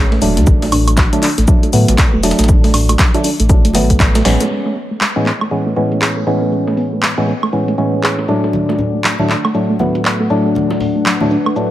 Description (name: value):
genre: deep house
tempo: 119 BPM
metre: 4/4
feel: swing 61% on 16ths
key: A major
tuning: A4 = 440 Hz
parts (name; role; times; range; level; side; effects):
- percussive organ stab; stabs; 0.0-11.7 s; A2 to D4; -17 LUFS; equal; chorus, sidechain pumping, tape echo
- sub bass with octave; bass; 0.0-4.4 s; E1 to A2; -15 LUFS; equal; sidechain pumping
- soft round pluck; arpeggios; 0.1-11.6 s; F#3 to D5; -20 LUFS; right 1 dB; chorus, sidechain pumping, tape echo
- breakbeat sampler-style drum kit; drums; 0.1-11.7 s; hi-hat, shaker, snare drum; -27 LUFS; equal; high-pass filter on snare, low-pass filter on snare, high-pass filter on perc, low-pass filter on perc, high-pass filter on hats, low-pass filter on hats, high-pass filter on room, low-pass filter on room
- punchy analog drum machine; drums; 0.2-11.5 s; handclaps, hi-hat, snare drum, woodblock; -18 LUFS; equal; none
- congas and bongos; percussion; 0.2-4.5, 8.5-11.3 s; none; -25 LUFS; right 2 dB; sidechain pumping on perc
- electronic kick drum; drums; 0.5-4.1 s; none; -12 LUFS; equal; none
- warbly tape-like pad; sustained chords; 6.2-11.7 s; A3 to G#5; -24 LUFS; left 3 dB; chorus, built-in reverb, sidechain pumping
room: light reverb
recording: none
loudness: -11 LUFS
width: side -13 dB against mid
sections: 0.0-4.5 A section; 4.5-11.7 B section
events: drum fill 4.3; band accent 4.3; filter sweep on ambient pad 4.5-11.7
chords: 0.0 Amaj9; 8.5 D/A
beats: | 0.47 0.97 1.48 1.98 | 2.49 2.99 3.50 4.00 | 4.50 5.01 5.51 6.02 | 6.52 7.02 7.53 8.03 | 8.54 9.04 9.54 10.05 | 10.55 11.06 11.56